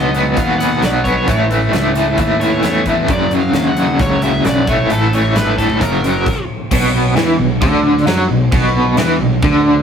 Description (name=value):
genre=blues rock power trio and southern rock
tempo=132 BPM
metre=4/4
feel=straight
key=unclear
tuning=A4 = 439 Hz
part: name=nasal lead guitar with a parked wah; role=melody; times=0.0-6.4 s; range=A4 to F#5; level=-22 LUFS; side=equal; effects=overdrive
part: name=overdriven semi-hollow guitar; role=riff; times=0.0-9.8 s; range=F#2 to B3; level=-14 LUFS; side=equal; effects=tremolo
part: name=fuzz fingered electric bass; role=bass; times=0.0-9.8 s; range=F#1 to F#2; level=-19 LUFS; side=equal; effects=overdrive
part: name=huge arena drum kit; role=drums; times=0.1-9.5 s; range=crash cymbal, hi-hat, kick drum, snare drum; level=-20 LUFS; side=equal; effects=none
room=wet small room ambience, RT60 0.5 s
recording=rough rehearsal-room recording, warm saturation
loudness=-12 LUFS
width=side -7 dB against mid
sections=0.0-6.7 A section; 6.7-9.8 B section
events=stop 6.3-6.7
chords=0.0 B; 1.3 A; 3.1 F#5; 4.7 A5; 5.8 F#; 6.7 B5